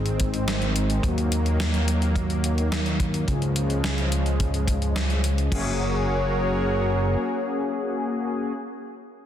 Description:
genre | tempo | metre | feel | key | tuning
synthwave | 107 BPM | 4/4 | straight | Gb lydian | A4 = 441 Hz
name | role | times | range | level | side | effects
lush unison pad | sustained chords | 0.0-8.5 s | Db3 to Db5 | -29 LUFS | equal | chorus, sidechain pumping
mellow synth brass | stabs | 0.0-8.5 s | Gb3 to C5 | -29 LUFS | left 2 dB | chorus, digital delay
fat analog bass | bass | 0.0-7.2 s | Gb1 to Eb2 | -24 LUFS | equal | none
gated 80s digital drum machine | drums | 0.1-5.6 s | crash cymbal, hi-hat, snare drum | -30 LUFS | equal | gated reverb, gated reverb snare, overdrive
kick drum | drums | 0.2-5.6 s | none | -30 LUFS | equal | none
room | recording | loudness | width
moderate lush hall reverb, RT60 2.1 s | dense, heavily limited modern master | -22 LUFS | side -10 dB against mid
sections
0.0-5.5 A section; 5.5-7.8 B section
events
filter sweep on analog polysynth 0.0-5.5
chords
0.0 Ab; 1.0 Ebm; 3.3 Db; 5.5 Gbadd9

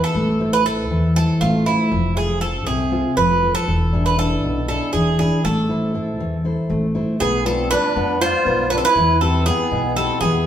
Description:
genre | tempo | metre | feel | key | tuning
greek folk, Greek bouzouki band | 239 BPM (eighths) | 7/8 | straight | A harmonic minor | A4 = 438 Hz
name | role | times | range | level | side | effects
Greek bouzouki | melody | 0.0-10.5 s | E4 to C5 | -20 LUFS | right 2 dB | none
fingerpicked steel-string acoustic guitar | accompaniment | 0.0-10.5 s | B2 to G5 | -20 LUFS | left 1 dB | none
upright bass | bass | 0.1-10.5 s | E1 to F2 | -24 LUFS | equal | none
musette accordion | second line | 7.2-10.5 s | B3 to F4 | -24 LUFS | equal | none
room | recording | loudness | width
wet large studio reverb, RT60 1.4 s | band playing live in one room | -16 LUFS | side -10 dB against mid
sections
0.0-7.2 A section; 7.2-10.5 B section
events
none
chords
0.2 Am; 1.9 F; 3.7 E7; 5.4 Am; 7.2 Bdim; 9.0 Em

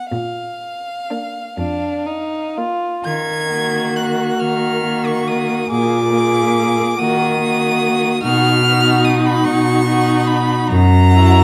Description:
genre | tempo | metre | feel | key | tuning
classical, slow romantic movement for string quartet | 39-49 BPM (dotted quarters) | 6/8 | rubato | Eb minor | A4 = 440 Hz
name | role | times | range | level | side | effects
rich violin | melody | 0.0-11.4 s | F5 to Ab6 | -23 LUFS | equal | none
rich cello | bass | 0.1-11.4 s | F2 to Eb3 | -19 LUFS | equal | none
warm violin | second line | 1.1-11.4 s | D4 to Ab4 | -23 LUFS | equal | none
warm viola | accompaniment | 1.1-11.4 s | Bb3 to Fb4 | -23 LUFS | equal | none
room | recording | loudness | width
moderate recital hall reverb, RT60 1.4 s | none | -16 LUFS | mono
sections
0.0-3.1 A section; 3.1-11.4 B section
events
none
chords
0.1 Bb; 3.1 Ebm; 5.7 Bb7; 7.0 Ebm; 8.2 B; 10.7 Gb7

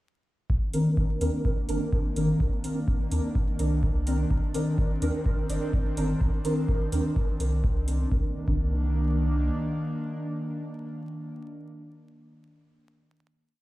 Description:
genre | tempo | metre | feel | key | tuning
dub techno | 126 BPM | 4/4 | straight | C minor | A4 = 440 Hz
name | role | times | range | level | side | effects
airy breathy pad | sustained chords | 0.5-11.4 s | Eb3 to D4 | -33 LUFS | equal | chorus, sidechain pumping
round analog bass | bass | 0.5-9.5 s | G1 to Eb2 | -27 LUFS | equal | sidechain pumping
electronic kick drum | drums | 0.5-8.6 s | none | -27 LUFS | equal | none
deep mellow chord stab | stabs | 0.7-11.8 s | Eb3 to Bb4 | -30 LUFS | equal | chorus, phaser, sidechain pumping, dub echo
electronic hi-hat | drums | 0.7-8.0 s | none | -43 LUFS | right 1 dB | none
room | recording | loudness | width
light reverb | played on a big sound system in a bare room, stone room reverb, vinyl crackle | -24 LUFS | side -17 dB against mid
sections
0.5-8.1 groove; 8.1-11.9 final chord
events
none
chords
0.5 Cm9

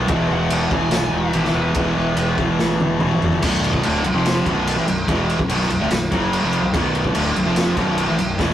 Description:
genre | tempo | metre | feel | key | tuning
hard rock | 144 BPM | 4/4 | straight | unclear | A4 = 440 Hz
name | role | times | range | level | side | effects
overdriven electric guitar | riff | 0.0-8.5 s | B1 to F#3 | -22 LUFS | left 3 dB | spring reverb
overdriven semi-hollow guitar | riff | 0.0-8.5 s | B1 to F#3 | -22 LUFS | right 2 dB | none
fuzz fingered electric bass | bass | 0.0-8.5 s | B0 to A1 | -25 LUFS | equal | overdrive
raw garage drum kit | drums | 0.1-8.5 s | crash cymbal, kick drum, snare drum, toms | -22 LUFS | equal | none
high-gain lead guitar | melody | 0.3-2.3 s | B4 to G#5 | -28 LUFS | equal | distortion
room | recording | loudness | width
moderate small room ambience, RT60 0.5 s | rough rehearsal-room recording, warm saturation | -16 LUFS | side -11 dB against mid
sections
0.0-3.4 A section; 3.4-8.5 B section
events
drum fill 2.6-3.4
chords
0.1 E5; 3.4 B5

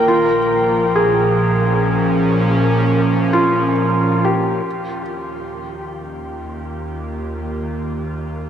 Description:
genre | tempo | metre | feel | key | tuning
ambient | 78 BPM | 3/4 | straight | unclear | A4 = 436 Hz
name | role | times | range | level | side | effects
airy breathy pad | sustained chords | 0.0-8.5 s | Bb2 to G5 | -19 LUFS | equal | chorus, shimmer reverb
felt-muted upright piano | arpeggios | 0.0-8.5 s | F4 to C5 | -20 LUFS | right 1 dB | tape echo, shimmer reverb
rich studio double bass section | bass | 0.0-8.5 s | Bb1 to Eb2 | -32 LUFS | equal | none
organ-like drone | drone | 0.0-8.5 s | Bb3 to Bb4 | -24 LUFS | left 1 dB | ensemble chorus, built-in reverb
room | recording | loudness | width
wet huge ambient reverb, RT60 8.0 s | none | -15 LUFS | side -9 dB against mid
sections
0.0-4.7 A section; 4.7-8.5 B section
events
none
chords
0.0 Bbm9; 4.7 Eb9

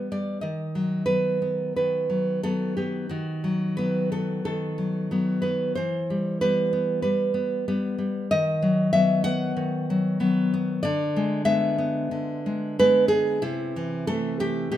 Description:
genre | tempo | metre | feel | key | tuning
romantic piece for solo classical guitar | 92 BPM | 4/4 | uneven beats, rubato | E minor | A4 = 445 Hz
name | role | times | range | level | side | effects
nylon-string guitar | solo | 0.0-14.8 s | B2 to F#5 | -22 LUFS | equal | none
room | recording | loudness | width
moderate recital hall reverb, RT60 1.6 s | minimal, uncompressed stereo recording | -22 LUFS | side -12 dB against mid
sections
0.0-14.8 A section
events
none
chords
0.4 B/D#; 5.8 Em; 8.3 B/D#; 10.8 E7/D; 13.4 Am/C

